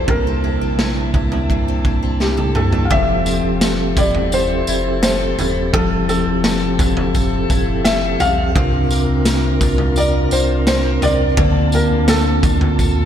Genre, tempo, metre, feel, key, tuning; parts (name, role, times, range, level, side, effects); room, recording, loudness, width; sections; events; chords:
dream pop; 85 BPM; 4/4; straight; F major; A4 = 444 Hz
felt-muted upright piano; melody; 0.0-13.1 s; G4 to F5; -21 LUFS; left 1 dB; ping-pong delay
percussive tonewheel organ; sustained chords; 0.0-13.1 s; C3 to A5; -20 LUFS; right 2 dB; fast rotary speaker
picked twelve-string acoustic guitar; arpeggios; 0.0-13.1 s; C3 to Bb4; -23 LUFS; left 5 dB; wide subtle chorus, ping-pong delay
warm sub bass; bass; 0.0-13.1 s; E1 to D2; -21 LUFS; equal
raw garage drum kit; drums; 0.1-13.0 s; kick drum, snare drum, tambourine, toms; -19 LUFS; equal
moderate lush hall reverb, RT60 2.4 s; dreamy mix soaked in reverb; -14 LUFS; side -9 dB against mid
0.0-2.9 A section; 2.9-13.1 B section
drum fill 2.2-2.9
0.1 C13; 2.9 Fmaj7; 8.6 C7sus4; 11.4 Bbmaj7/D